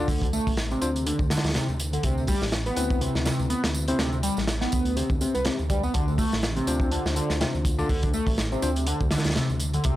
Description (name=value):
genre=breakbeat, breaks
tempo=123 BPM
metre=4/4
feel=swing 56% on 16ths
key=D dorian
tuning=A4 = 443 Hz
part: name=overdriven synth lead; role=riff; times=0.0-10.0 s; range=C3 to B3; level=-27 LUFS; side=equal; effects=distortion, chorus, phaser, cassette tape, analog delay
part: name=bell-like tine electric piano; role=stabs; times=0.0-8.7 s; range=C4 to D5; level=-32 LUFS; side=left 3 dB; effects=analog delay
part: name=dark detuned saw bass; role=bass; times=0.0-10.0 s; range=A1 to D2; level=-29 LUFS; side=equal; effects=none
part: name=crunchy breakbeat drum kit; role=drums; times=0.1-10.0 s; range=hi-hat, kick drum, snare drum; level=-27 LUFS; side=equal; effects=none
part: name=tambourine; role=drums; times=0.1-10.0 s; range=none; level=-39 LUFS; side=right 1 dB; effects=none
room=studio reverb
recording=dry, gritty hardware recording, transformer saturation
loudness=-23 LUFS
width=side -14 dB against mid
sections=0.0-10.0 A section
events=none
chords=0.0 D7(no3); 2.0 Cmaj7; 5.9 Dm7